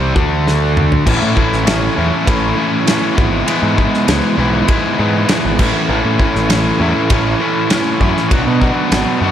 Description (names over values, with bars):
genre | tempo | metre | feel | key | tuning
classic rock | 100 BPM | 4/4 | straight | A major | A4 = 443 Hz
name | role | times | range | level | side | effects
distorted electric guitar | riff | 0.0-9.3 s | G#2 to F#4 | -14 LUFS | equal | distortion
growling picked electric bass | bass | 0.0-9.3 s | G#1 to B2 | -18 LUFS | equal | overdrive
damped 70s drum kit | drums | 0.2-9.1 s | crash cymbal, kick drum, ride cymbal, snare drum, toms | -18 LUFS | equal | none
room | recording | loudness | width
moderate concert hall reverb, RT60 2.5 s | big arena sound | -12 LUFS | side -10 dB against mid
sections
0.0-1.1 A section; 1.1-9.3 B section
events
drum fill 0.5-1.1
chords
0.2 D5; 1.1 A; 3.2 E/G#; 5.6 A; 8.3 Bm